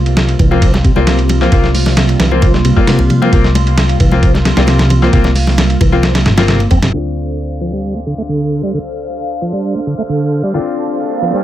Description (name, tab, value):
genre	breakbeat, breaks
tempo	133 BPM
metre	4/4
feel	straight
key	D minor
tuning	A4 = 439 Hz
part	phased analog pad	sustained chords	0.0-11.4 s	C3 to F5	-19 LUFS	right 1 dB	phaser, chorus, sidechain pumping
part	hollow-body short-scale picked electric bass	bass	0.0-11.4 s	G1 to F2	-14 LUFS	equal	low-pass filter
part	dusty soul sampler-style drum kit	drums	0.1-6.9 s	hi-hat, kick drum, ride cymbal, snare drum	-13 LUFS	equal	none
part	congas	percussion	0.2-6.8 s	none	-22 LUFS	left 2 dB	none
part	tonewheel organ	riff	0.4-11.4 s	Bb2 to C4	-17 LUFS	right 1 dB	overdrive, chorus vibrato, slow rotary speaker, low-pass filter, ping-pong delay
part	bright concert grand piano	stabs	0.5-11.4 s	Bb3 to F4	-20 LUFS	left 6 dB	vintage 12-bit sampler grit, low-pass filter, ping-pong delay
part	riser	sound effects	10.8-11.4 s	none	-22 LUFS	right 3 dB	none
room	light reverb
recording	low-pass filter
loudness	-10 LUFS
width	side -13 dB against mid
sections	0.0-6.9 A section; 6.9-11.4 B section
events	filter sweep on tonewheel organ 6.9-11.4; filter sweep on grand piano 6.9-11.4; filter sweep 6.9-11.4; riser 10.8-11.4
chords	0.0 C7sus4; 6.9 Dm7